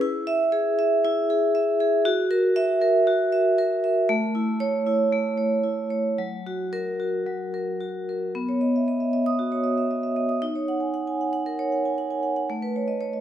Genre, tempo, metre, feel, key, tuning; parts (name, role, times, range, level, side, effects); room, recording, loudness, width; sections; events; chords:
classical, contemporary piece for solo vibraphone; 117 BPM; 4/4; rubato; B major; A4 = 441 Hz
vibraphone with medium hard mallets; solo; 0.0-13.2 s; F#3 to D#6; -22 LUFS; right 1 dB
wet recital hall reverb, RT60 1.8 s; -21 LUFS; side -10 dB against mid
0.0-8.4 A section; 8.4-13.2 A section
0.0 E; 2.1 F#7; 4.1 A; 6.2 F#; 8.4 Badd9; 10.4 D#m7; 12.5 Aadd9